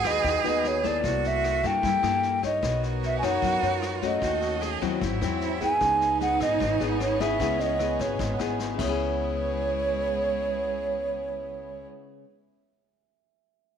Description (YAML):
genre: bossa nova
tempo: 151 BPM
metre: 4/4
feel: straight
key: C# minor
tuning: A4 = 440 Hz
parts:
  - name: mellow hollow silver concert flute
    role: melody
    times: 0.0-11.9 s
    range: C#5 to G#5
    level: -26 LUFS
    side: right 1 dB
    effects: none
  - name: clear cello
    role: second line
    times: 0.0-11.8 s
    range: G#3 to G#4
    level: -32 LUFS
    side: right 11 dB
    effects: none
  - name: nylon-string guitar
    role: accompaniment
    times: 0.0-12.4 s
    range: G#2 to C#5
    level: -31 LUFS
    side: left 12 dB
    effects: none
  - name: upright bass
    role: bass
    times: 0.0-11.8 s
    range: G#1 to G2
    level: -33 LUFS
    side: equal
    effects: none
  - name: vintage brush drum kit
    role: drums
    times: 0.0-8.9 s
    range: crash cymbal, kick drum, rim click, snare drum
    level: -37 LUFS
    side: left 4 dB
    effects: none
  - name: warm concert grand piano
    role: accompaniment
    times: 0.4-1.2, 5.6-13.8 s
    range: B3 to G#5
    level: -38 LUFS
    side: right 10 dB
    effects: none
  - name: warm studio violin section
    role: sustained chords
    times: 2.6-11.8 s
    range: B3 to E5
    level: -37 LUFS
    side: left 1 dB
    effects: none
room: moderate echo chamber reverb, RT60 1.5 s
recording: 1960s-style stereo with parts hard left and right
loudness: -23 LUFS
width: side -8 dB against mid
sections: 0.0-9.0 A section; 9.0-12.2 B section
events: none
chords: 0.0 G#m7; 1.0 C6; 2.6 Bmaj9; 4.2 D#m7b5; 5.0 G#7alt; 5.8 C#m7